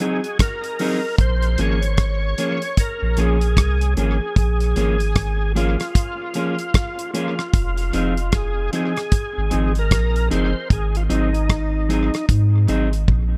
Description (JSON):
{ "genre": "roots reggae", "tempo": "76 BPM", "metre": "4/4", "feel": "swing 60% on 16ths", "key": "Bb minor", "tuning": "A4 = 439 Hz", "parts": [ { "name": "overdriven tonewheel organ", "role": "melody", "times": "0.0-12.3 s", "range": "Eb4 to Db5", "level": "-28 LUFS", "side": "equal", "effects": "chorus vibrato, slow rotary speaker, tape echo" }, { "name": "mellow electric guitar", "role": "accompaniment", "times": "0.0-12.9 s", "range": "F3 to Ab4", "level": "-28 LUFS", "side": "equal", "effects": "warbly pitch drift, tape echo" }, { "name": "damped 70s drum kit", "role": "drums", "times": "0.0-13.3 s", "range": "hi-hat, kick drum, rim click, toms", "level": "-22 LUFS", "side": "equal", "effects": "none" }, { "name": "warm sub bass", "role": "bass", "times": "1.2-13.4 s", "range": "F1 to Ab2", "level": "-22 LUFS", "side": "equal", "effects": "none" } ], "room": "studio reverb", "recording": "none", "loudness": "-20 LUFS", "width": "mono", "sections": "0.0-13.4 A section", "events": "drum fill 13.1", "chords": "0.0 Ab7; 1.2 Bbm7; 7.5 Fm7; 10.7 Ab7" }